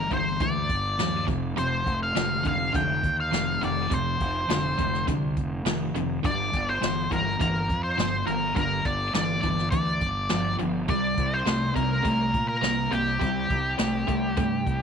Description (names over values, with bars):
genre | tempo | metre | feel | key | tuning
classic rock | 103 BPM | 4/4 | straight | G minor | A4 = 439 Hz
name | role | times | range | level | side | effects
octave-fuzz lead guitar | melody | 0.0-14.8 s | G4 to G5 | -27 LUFS | left 1 dB | wah, distortion
biting overdriven guitar | riff | 0.0-14.8 s | F2 to Bb3 | -31 LUFS | right 14 dB | none
distorted electric guitar | riff | 0.0-14.8 s | F2 to Bb3 | -31 LUFS | left 12 dB | overdrive
fuzz fingered electric bass | bass | 0.0-14.8 s | F1 to Bb2 | -31 LUFS | right 1 dB | overdrive
jazz brush drum kit | drums | 0.1-14.8 s | hi-hat, kick drum, snare drum | -31 LUFS | equal | none
room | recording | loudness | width
light reverb, small room ambience | 1960s-style stereo with parts hard left and right | -23 LUFS | side -6 dB against mid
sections
0.0-14.8 A section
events
none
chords
0.0 G5; 1.3 F5; 6.2 G5; 10.9 C5